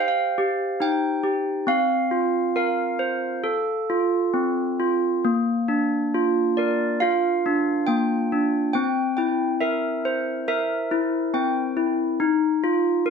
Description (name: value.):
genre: children's music, lullaby.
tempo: 69 BPM.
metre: 4/4.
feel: rubato.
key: unclear.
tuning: A4 = 440 Hz.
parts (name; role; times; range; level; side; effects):
handbells; solo; 0.0-13.1 s; Bb3 to G5; -20 LUFS; equal; slapback echo.
room: wet small room reverb, RT60 0.5 s.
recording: none.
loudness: -20 LUFS.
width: side -6 dB against mid.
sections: 0.0-13.1 A section.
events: none.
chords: 0.0 Cm; 1.7 Fsus4; 3.4 F; 5.2 Bb; 8.7 C7; 12.2 F7(no3).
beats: 0.81 | 1.68 2.56 3.44 4.34 | 5.24 6.13 7.01 7.88 | 8.74 9.61 10.48 11.33 | 12.19 13.06.